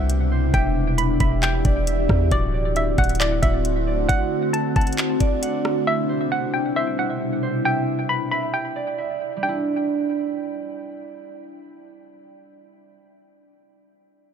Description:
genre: hip hop, atmospheric cloud-rap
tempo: 135 BPM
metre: 4/4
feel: half-time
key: E minor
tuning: A4 = 440 Hz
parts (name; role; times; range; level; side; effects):
- hollow square pluck; melody; 0.0-10.7 s; D5 to B5; -26 LUFS; equal; chorus, low-pass filter, digital delay
- glassy FM pad; sustained chords; 0.0-7.6 s; B2 to G4; -24 LUFS; left 1 dB; ensemble chorus, built-in reverb, sidechain pumping
- concert harp; arpeggios; 0.0-13.0 s; G3 to F#5; -28 LUFS; right 6 dB; low-pass filter, digital delay
- warm 808-style bass; bass; 0.0-4.1 s; D1 to E2; -22 LUFS; equal; none
- smooth R&B drum kit; drums; 0.1-5.8 s; handclaps, hi-hat, kick drum, rim click; -22 LUFS; equal; none
room: light reverb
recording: none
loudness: -19 LUFS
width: side -8 dB against mid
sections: 0.0-9.4 A section; 9.4-13.0 B section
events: none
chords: 0.0 Cmaj7; 0.5 Em7; 2.3 D7; 5.9 Cmaj7; 7.6 Em7

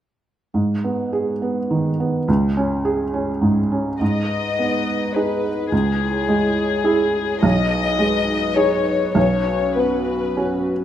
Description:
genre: neoclassical piano and strings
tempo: 104 BPM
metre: 3/4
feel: uneven beats, rubato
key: G# minor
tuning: A4 = 440 Hz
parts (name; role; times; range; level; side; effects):
- felt-muted upright piano; accompaniment; 0.5-10.8 s; B1 to G#4; -19 LUFS; right 2 dB; none
- warm chamber violin section; melody; 4.0-10.7 s; G#4 to D#5; -22 LUFS; left 7 dB; none
- hollow soft pad; sustained chords; 4.0-10.8 s; C#4 to C#5; -26 LUFS; equal; chorus
room: light reverb, studio reverb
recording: rough home demo mix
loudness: -17 LUFS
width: side -10 dB against mid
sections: 0.5-4.0 A section; 4.0-10.8 B section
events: none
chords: 0.5 G#m; 2.3 C#5; 4.0 G#m; 5.7 C#m; 7.4 G#m/B; 9.2 Bsus2

